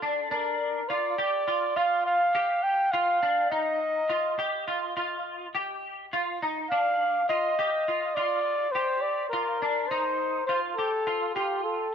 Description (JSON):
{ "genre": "progressive instrumental, progressive", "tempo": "206 BPM (eighths)", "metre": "11/8", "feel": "straight", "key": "G minor", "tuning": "A4 = 440 Hz", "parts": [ { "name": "breathy trumpet", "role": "melody", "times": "0.0-11.9 s", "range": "G4 to G5", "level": "-26 LUFS", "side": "equal", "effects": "dub echo" }, { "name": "semi-hollow electric guitar", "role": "arpeggios", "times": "0.0-11.9 s", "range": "D4 to G4", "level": "-30 LUFS", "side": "equal", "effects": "ensemble chorus" } ], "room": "moderate echo chamber reverb, RT60 1.8 s", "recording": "echo-heavy mix", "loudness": "-25 LUFS", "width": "side -7 dB against mid", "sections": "0.0-6.7 A section; 6.7-11.9 B section", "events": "none", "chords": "0.3 Bb (rootless); 3.5 Ebadd9; 6.7 G7(no3); 9.9 F7" }